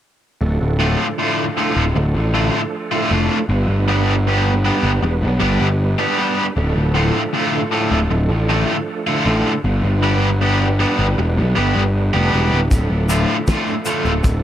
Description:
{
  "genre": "psychedelic rock",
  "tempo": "78 BPM",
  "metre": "4/4",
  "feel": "straight",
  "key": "D dorian",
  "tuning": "A4 = 440 Hz",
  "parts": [
    { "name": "bright tonewheel organ", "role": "sustained chords", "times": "0.4-14.4 s", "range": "F3 to B4", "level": "-26 LUFS", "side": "right 5 dB", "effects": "slow rotary speaker, chorus vibrato" },
    { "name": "fuzz picked electric bass", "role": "bass", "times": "0.4-14.4 s", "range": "D1 to B1", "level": "-17 LUFS", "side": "equal", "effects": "overdrive" },
    { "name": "cranked stack guitar", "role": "riff", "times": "0.8-14.3 s", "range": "A2 to G4", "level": "-19 LUFS", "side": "equal", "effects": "overdrive, harmonic tremolo, dub echo" },
    { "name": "cloth-damped thuddy drum kit", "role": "drums", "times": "12.7-14.4 s", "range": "hi-hat, kick drum, snare drum", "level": "-18 LUFS", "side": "equal", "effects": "none" },
    { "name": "tube shaker", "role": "percussion", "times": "12.7-14.4 s", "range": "none", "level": "-35 LUFS", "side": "left 4 dB", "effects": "dub echo" }
  ],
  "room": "light reverb, small room ambience",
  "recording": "echo-heavy mix",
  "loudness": "-15 LUFS",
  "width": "side -11 dB against mid",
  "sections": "0.4-14.4 A section",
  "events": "none",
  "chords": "0.4 Dm; 3.5 G; 6.6 Dm; 9.6 G; 12.7 Dm"
}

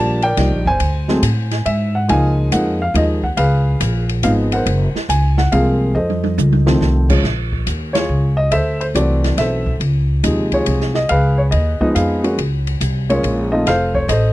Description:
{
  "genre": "jazz piano trio",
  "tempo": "140 BPM",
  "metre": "3/4",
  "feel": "swing 67% on 8ths",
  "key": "Bb minor",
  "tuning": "A4 = 439 Hz",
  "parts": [
    { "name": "dark grand piano", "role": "melody", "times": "0.0-14.3 s", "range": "C3 to A5", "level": "-17 LUFS", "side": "equal", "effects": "none" },
    { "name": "upright bass", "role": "bass", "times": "0.0-14.3 s", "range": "F1 to A2", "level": "-17 LUFS", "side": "equal", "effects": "none" },
    { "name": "open jazz drum kit", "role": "drums", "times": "0.2-14.2 s", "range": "crash cymbal, hi-hat, kick drum, ride cymbal, snare drum, toms", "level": "-24 LUFS", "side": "equal", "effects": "none" }
  ],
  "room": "little or no reverb",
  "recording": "dry, close 1970s-style studio recording",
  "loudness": "-14 LUFS",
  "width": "side -16 dB against mid",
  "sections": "0.0-7.2 A section; 7.2-14.3 B section",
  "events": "drum fill 6.0-6.8; band accent 7.9",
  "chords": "0.0 Ebmaj7; 0.8 D7#11; 2.1 Db6; 3.4 Db7; 4.7 Gbmaj9#11; 6.0 F7; 7.2 Bbm7; 8.5 D9; 9.8 Dbmaj9; 11.1 Db7; 12.4 Bbm11; 13.7 F7"
}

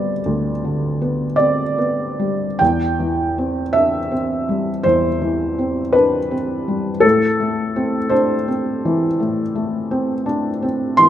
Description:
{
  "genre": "classical, romantic nocturne for solo piano",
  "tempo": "47-57 BPM (dotted quarters)",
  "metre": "12/8",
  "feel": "rubato",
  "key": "C major",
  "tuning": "A4 = 440 Hz",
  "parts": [
    { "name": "felt-muted upright piano", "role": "solo", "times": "0.0-11.1 s", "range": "D2 to C6", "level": "-16 LUFS", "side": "equal", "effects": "none" }
  ],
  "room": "moderate recital hall reverb, RT60 1.4 s",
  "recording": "close, detailed microphones",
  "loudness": "-16 LUFS",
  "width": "side -11 dB against mid",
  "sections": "0.0-11.1 A section",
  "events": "none",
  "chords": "0.0 G/D; 2.6 C/E; 7.0 Am"
}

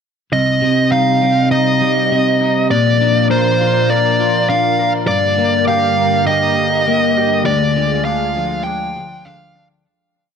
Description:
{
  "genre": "post-rock",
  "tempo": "101 BPM",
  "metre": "4/4",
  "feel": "straight",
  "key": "C minor",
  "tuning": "A4 = 440 Hz",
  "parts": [
    { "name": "fuzz lead guitar", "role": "melody", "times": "0.3-9.7 s", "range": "C5 to G5", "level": "-15 LUFS", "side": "right 1 dB", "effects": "distortion, digital delay" },
    { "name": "analog string pad", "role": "sustained chords", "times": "0.3-9.8 s", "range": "D2 to G5", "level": "-20 LUFS", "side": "left 1 dB", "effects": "ensemble chorus" },
    { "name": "clean electric guitar", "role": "arpeggios", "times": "0.3-9.9 s", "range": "C2 to Bb4", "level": "-17 LUFS", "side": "left 2 dB", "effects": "digital delay" }
  ],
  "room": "moderate large studio reverb, RT60 1.1 s, digital ambience",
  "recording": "none",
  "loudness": "-12 LUFS",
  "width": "side -6 dB against mid",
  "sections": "0.3-9.8 A section",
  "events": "fade-out 7.5-9.8",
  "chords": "0.3 Cm; 2.7 Bb; 5.1 Gm; 7.5 Ddim"
}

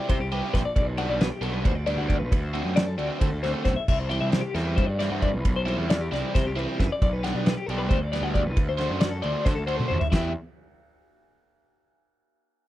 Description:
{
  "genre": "math rock and midwest emo",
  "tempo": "269 BPM (eighths)",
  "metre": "7/8",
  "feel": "straight",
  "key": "unclear",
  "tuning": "A4 = 442 Hz",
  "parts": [
    { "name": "twelve-string electric guitar", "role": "arpeggios", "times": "0.0-10.3 s", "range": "E4 to G5", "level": "-30 LUFS", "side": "left 4 dB", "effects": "tremolo" },
    { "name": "overdriven electric guitar", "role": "riff", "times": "0.0-10.3 s", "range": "B2 to C5", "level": "-30 LUFS", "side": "right 2 dB", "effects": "none" },
    { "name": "fuzz picked electric bass", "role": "bass", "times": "0.1-10.3 s", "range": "A#1 to D3", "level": "-29 LUFS", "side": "equal", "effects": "overdrive" },
    { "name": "loose indie drum kit", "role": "drums", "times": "0.1-10.2 s", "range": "crash cymbal, kick drum, ride cymbal, snare drum, toms", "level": "-26 LUFS", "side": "equal", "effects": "none" }
  ],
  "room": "little or no reverb",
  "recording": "none",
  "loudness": "-23 LUFS",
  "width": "side -14 dB against mid",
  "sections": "0.0-10.1 A section; 10.1-11.7 B section",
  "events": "drum fill 9.8-10.1",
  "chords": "0.0 Cmaj9; 0.8 Gmaj7/B; 2.3 D7; 3.9 Cmaj9; 7.0 Gmaj7/B; 8.6 D7; 10.1 N.C."
}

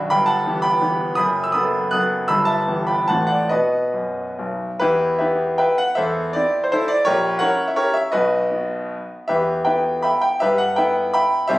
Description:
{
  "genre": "classical, romantic triple-time dance for piano with dotted rhythms",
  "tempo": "128-184 BPM",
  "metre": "3/4",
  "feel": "rubato",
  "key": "E minor",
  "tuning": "A4 = 440 Hz",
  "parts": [
    { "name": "clear concert grand piano", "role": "solo", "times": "0.0-11.6 s", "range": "F#1 to F#6", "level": "-17 LUFS", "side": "equal", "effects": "none" }
  ],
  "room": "light reverb",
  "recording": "recorded on a phone in the room, studio reverb",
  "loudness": "-17 LUFS",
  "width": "side -18 dB against mid",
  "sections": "0.0-4.8 A section; 4.8-11.6 B section",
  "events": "none",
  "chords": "0.1 Em/G; 1.2 B7/F#; 2.3 Em/G; 3.1 F#m7b5/A; 3.5 B; 4.8 Em; 6.0 Am/E; 7.1 A#dim7; 8.1 B; 9.3 Em; 10.4 Em/G"
}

